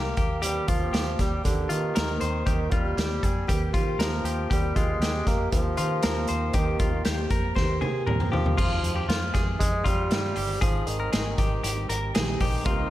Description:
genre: jangly indie pop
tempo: 118 BPM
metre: 4/4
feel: straight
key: Eb major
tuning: A4 = 439 Hz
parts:
  - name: warm bassoon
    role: melody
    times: 0.0-12.9 s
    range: D3 to Bb3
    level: -31 LUFS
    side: equal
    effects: slapback echo
  - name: direct-recorded clean electric guitar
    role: arpeggios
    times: 0.0-12.9 s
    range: F4 to C5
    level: -32 LUFS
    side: left 3 dB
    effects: spring reverb
  - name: vintage muted fingered electric bass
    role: bass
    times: 0.0-12.9 s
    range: G1 to Eb3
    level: -30 LUFS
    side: equal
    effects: none
  - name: vintage drum kit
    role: drums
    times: 0.2-12.8 s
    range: crash cymbal, hi-hat, kick drum, snare drum, toms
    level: -26 LUFS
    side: equal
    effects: none
  - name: picked twelve-string acoustic guitar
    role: accompaniment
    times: 0.4-12.9 s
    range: F2 to G4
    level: -33 LUFS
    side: right 3 dB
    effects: slapback echo
  - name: overdriven combo organ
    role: accompaniment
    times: 12.6-12.9 s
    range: C4 to Bb4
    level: -34 LUFS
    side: right 8 dB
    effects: none
room: light reverb, studio ambience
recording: none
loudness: -23 LUFS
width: side -14 dB against mid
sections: 0.0-8.6 A section; 8.6-12.9 B section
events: drum fill 7.6-8.6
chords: 0.2 Eb6; 8.6 Fm7; 10.6 Abmaj7

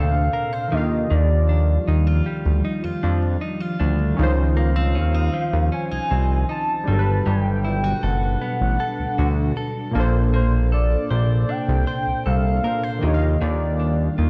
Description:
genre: R&B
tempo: 78 BPM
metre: 4/4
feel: straight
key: unclear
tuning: A4 = 439 Hz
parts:
  - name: warm velvety synth lead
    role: melody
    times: 0.0-14.1 s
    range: C5 to A5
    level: -29 LUFS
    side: equal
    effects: chorus
  - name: warm analog keys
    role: accompaniment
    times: 0.0-14.3 s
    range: Bb2 to F5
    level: -30 LUFS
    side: equal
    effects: chorus
  - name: ethereal airy pad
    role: sustained chords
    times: 0.1-14.3 s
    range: B2 to C5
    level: -32 LUFS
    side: equal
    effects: ensemble chorus, built-in reverb
  - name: direct-recorded clean electric guitar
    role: arpeggios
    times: 0.0-14.3 s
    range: Eb3 to C5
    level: -32 LUFS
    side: equal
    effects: none
  - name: fat analog bass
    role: bass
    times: 0.0-14.3 s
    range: F#1 to F2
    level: -22 LUFS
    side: equal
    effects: none
room: moderate recital hall reverb, RT60 1.4 s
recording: dark, warm production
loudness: -21 LUFS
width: mono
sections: 0.0-14.3 A section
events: none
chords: 0.0 Bbmaj9; 0.7 Ebmaj9; 4.2 Dbmaj9; 6.9 Gmaj9; 10.0 Bbmaj9; 13.0 Ebmaj9

